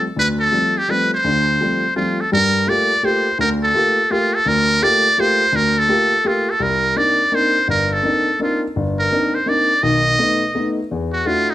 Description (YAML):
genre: jazz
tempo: 168 BPM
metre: 3/4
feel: swing 64% on 8ths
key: G minor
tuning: A4 = 440 Hz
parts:
  - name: warm grand piano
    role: accompaniment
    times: 0.0-11.5 s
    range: G1 to G4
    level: -19 LUFS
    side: left 1 dB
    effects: none
  - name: trumpet with metal mute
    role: melody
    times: 0.2-11.5 s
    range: D#4 to D#5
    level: -16 LUFS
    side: equal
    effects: none
room: moderate large studio reverb, RT60 1.2 s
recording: none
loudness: -14 LUFS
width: side -14 dB against mid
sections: 0.0-2.3 A section; 2.3-10.9 B section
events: none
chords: 0.0 G9sus4; 2.3 Gm9; 6.6 Cm9; 9.8 B7; 10.9 E9sus4